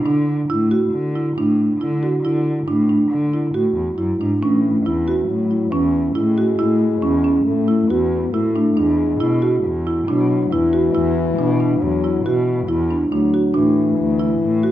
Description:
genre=contemporary instrumental, chamber music in an uneven meter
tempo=138 BPM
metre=5/4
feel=straight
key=unclear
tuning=A4 = 443 Hz
part: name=marimba with medium mallets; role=arpeggios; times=0.1-14.7 s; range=C#4 to F#4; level=-18 LUFS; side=right 2 dB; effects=none
part: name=muted cello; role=bass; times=0.1-14.7 s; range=D2 to D3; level=-21 LUFS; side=left 1 dB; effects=none
part: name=dark French horn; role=second line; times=4.4-14.7 s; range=E3 to B3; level=-23 LUFS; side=left 7 dB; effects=none
room=wet recital hall reverb, RT60 1.3 s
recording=minimal, uncompressed stereo recording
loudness=-16 LUFS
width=side -13 dB against mid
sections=0.0-13.1 A section; 13.1-14.7 B section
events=none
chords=0.1 Dadd9; 4.4 A; 8.8 Eadd9; 13.1 D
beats=| 0.06 0.50 0.93 1.37 1.81 | 2.24 2.68 3.12 3.55 3.99 | 4.42 4.86 5.29 5.73 6.16 | 6.60 7.03 7.47 7.90 8.34 | 8.77 9.21 9.64 10.08 10.51 | 10.95 11.38 11.81 12.25 12.68 | 13.12 13.55 13.98 14.42

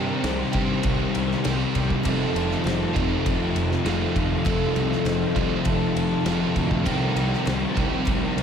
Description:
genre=rock, shoegaze and dream pop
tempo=100 BPM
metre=4/4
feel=straight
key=F mixolydian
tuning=A4 = 440 Hz
part: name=picked twelve-string acoustic guitar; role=arpeggios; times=0.0-8.4 s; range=F4 to C5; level=-32 LUFS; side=equal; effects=lush chorus, analog delay
part: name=overdriven semi-hollow guitar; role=riff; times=0.0-8.4 s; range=F2 to G4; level=-26 LUFS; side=right 6 dB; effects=reverse reverb
part: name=thick fuzz guitar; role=riff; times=0.0-8.4 s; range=F2 to C4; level=-25 LUFS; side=left 5 dB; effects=distortion, ensemble chorus
part: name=fuzz fingered electric bass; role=bass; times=0.0-8.4 s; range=F1 to G2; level=-29 LUFS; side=equal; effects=overdrive
part: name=loose indie drum kit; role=drums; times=0.2-8.4 s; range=kick drum, ride cymbal, snare drum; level=-29 LUFS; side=equal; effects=none
room=wet huge ambient reverb, RT60 8.1 s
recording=dreamy mix soaked in reverb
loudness=-21 LUFS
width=side -7 dB against mid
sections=0.0-8.4 A section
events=none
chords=0.0 Cm7; 2.0 F7; 6.9 Cm7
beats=0.24 0.85 1.45 | 2.05 2.65 3.25 3.85 | 4.46 5.06 5.66 6.26 | 6.86 7.47 8.07

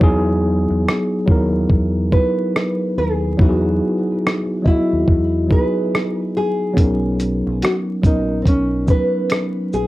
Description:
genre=lo-fi hip hop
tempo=71 BPM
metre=4/4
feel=swing 62% on 16ths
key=unclear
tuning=A4 = 441 Hz
part: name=mellow tine electric piano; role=accompaniment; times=0.0-9.9 s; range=F#3 to D#5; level=-19 LUFS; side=equal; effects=medium stereo tremolo, cassette tape, plate reverb
part: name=deep dub fingered electric bass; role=bass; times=0.0-9.9 s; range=A#1 to E2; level=-22 LUFS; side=equal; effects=none
part: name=dusty soul sampler-style drum kit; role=drums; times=0.0-9.9 s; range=hi-hat, kick drum, rim click, shaker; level=-16 LUFS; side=equal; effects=cassette tape
part: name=nylon-string guitar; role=melody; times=2.1-9.9 s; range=C4 to B4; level=-22 LUFS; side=equal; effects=cassette tape, tape echo
room=moderate small room reverb, RT60 0.5 s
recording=home recording on cassette, vinyl crackle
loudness=-15 LUFS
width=side -17 dB against mid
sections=0.0-9.9 A section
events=break 0.0-6.8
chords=0.0 Emaj9; 6.8 Bmaj9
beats=| 0.01 0.85 1.70 2.54 | 3.39 4.24 5.08 5.93 | 6.77 7.62 8.46 9.31

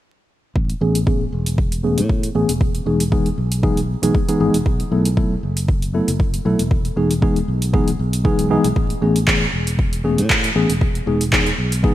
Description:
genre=deep house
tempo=117 BPM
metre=4/4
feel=swing 54% on 16ths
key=E major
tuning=A4 = 440 Hz
part: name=fingered electric bass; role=bass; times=0.6-11.9 s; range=E1 to A2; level=-21 LUFS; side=equal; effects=sidechain pumping
part: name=electronic kick drum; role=drums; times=0.6-11.9 s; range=none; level=-19 LUFS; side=equal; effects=none
part: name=punchy analog drum machine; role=drums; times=0.7-11.8 s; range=handclaps, hi-hat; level=-22 LUFS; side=right 1 dB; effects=overdrive, gated reverb
part: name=mellow tine electric piano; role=stabs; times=0.8-11.9 s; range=E3 to A4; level=-20 LUFS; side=left 1 dB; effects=medium stereo tremolo, sidechain pumping, low-pass filter, ping-pong delay
room=light reverb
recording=bright 1980s-style digital production, vinyl crackle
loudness=-16 LUFS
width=side -14 dB against mid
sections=0.6-11.9 A section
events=filter sweep on tine electric piano 0.6-11.9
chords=0.6 Amaj9; 2.6 Emaj7; 4.7 B7sus4; 6.7 Emaj7; 8.8 Amaj9; 10.8 Emaj7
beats=| 0.56 1.07 1.58 2.10 | 2.61 3.12 3.63 4.15 | 4.66 5.17 5.68 6.20 | 6.71 7.22 7.74 8.25 | 8.76 9.27 9.79 10.30 | 10.81 11.33 11.84

